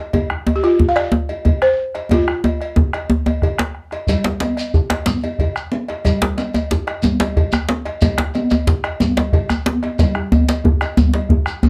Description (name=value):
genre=west african traditional, West African drum ensemble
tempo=122 BPM (dotted quarters)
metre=12/8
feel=straight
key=unclear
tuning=A4 = 441 Hz
part: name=bombo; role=percussion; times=0.1-11.7 s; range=none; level=-21 LUFS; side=equal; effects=none
part: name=cowbell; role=percussion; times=0.1-11.3 s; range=none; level=-30 LUFS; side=equal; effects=none
part: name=djembe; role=percussion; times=0.1-11.7 s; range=none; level=-26 LUFS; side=equal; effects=none
part: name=djembe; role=percussion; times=0.1-11.7 s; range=none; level=-20 LUFS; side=equal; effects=none
part: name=balafon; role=melody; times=0.6-3.7 s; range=F4 to F5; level=-19 LUFS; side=equal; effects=none
part: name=congas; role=percussion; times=4.1-11.7 s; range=none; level=-25 LUFS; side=equal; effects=none
part: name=shekere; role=percussion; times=4.1-11.7 s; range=none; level=-30 LUFS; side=equal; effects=none
room=moderate small room reverb, RT60 0.5 s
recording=none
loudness=-18 LUFS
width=mono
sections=0.0-4.1 A section; 4.1-11.7 B section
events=drum fill 2.1-4.1, 11.5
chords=none